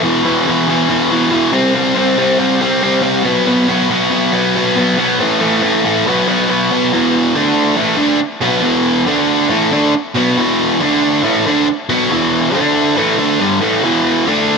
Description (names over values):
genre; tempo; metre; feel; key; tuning
rock; 139 BPM; 4/4; straight; E minor; A4 = 441 Hz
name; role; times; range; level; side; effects
biting overdriven guitar; solo; 0.0-14.6 s; E2 to D4; -11 LUFS; equal; ping-pong delay
room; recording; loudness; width
moderate plate reverb, RT60 2.9 s; bright 1980s-style digital production; -11 LUFS; side -5 dB against mid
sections
0.0-6.9 A section; 6.9-14.6 B section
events
none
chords
0.0 E5; 1.5 C5; 3.2 B5; 5.2 A5; 6.0 B5; 6.9 E5; 7.3 D5; 7.8 E5; 9.1 D5; 9.5 E5; 10.8 D5; 11.2 E5; 12.5 D5; 13.0 Em